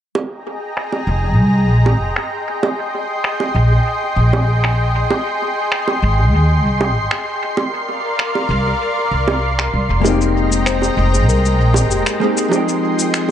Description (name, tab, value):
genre	sunset chillout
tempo	97 BPM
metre	4/4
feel	straight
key	F dorian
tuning	A4 = 439 Hz
part	wind-like tuned noise texture	texture	1.4-13.3 s	C6	-26 LUFS	right 1 dB	built-in reverb
part	lush unison pad	sustained chords	0.2-13.3 s	Ab3 to C6	-21 LUFS	equal	chorus
part	bongos	percussion	0.2-13.3 s	none	-23 LUFS	right 4 dB	dub echo
part	electronic finger snaps and cabasa	drums	0.8-13.3 s	none	-23 LUFS	left 1 dB	overdrive, low-pass filter on snare, small room ambience, low-pass filter on perc, dub echo
part	upright bass	bass	1.1-12.0 s	F1 to Eb2	-15 LUFS	equal	none
part	vintage hollow-body jazz guitar	accompaniment	10.0-13.3 s	F3 to G5	-19 LUFS	moving between left 7 dB and right 5 dB	auto-pan, tape echo
part	kalimba	arpeggios	10.0-12.7 s	Eb4 to C5	-23 LUFS	left 7 dB	tape echo
room	moderate spring reverb, RT60 2.1 s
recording	echo-heavy mix, nothing above 10.4 kHz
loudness	-14 LUFS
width	side -10 dB against mid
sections	0.2-13.3 A section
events	filter sweep on drum 0.2-13.3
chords	0.2 Fm11; 2.6 Bb13sus4; 5.1 Abmaj7; 7.6 C9sus4; 10.0 Fm11; 12.5 Bb9sus4 (rootless)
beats	| 0.15 0.77 1.39 2.01 | 2.63 3.25 3.86 4.48 | 5.10 5.72 6.34 6.96 | 7.57 8.19 8.81 9.43 | 10.05 10.67 11.29 11.90 | 12.52 13.14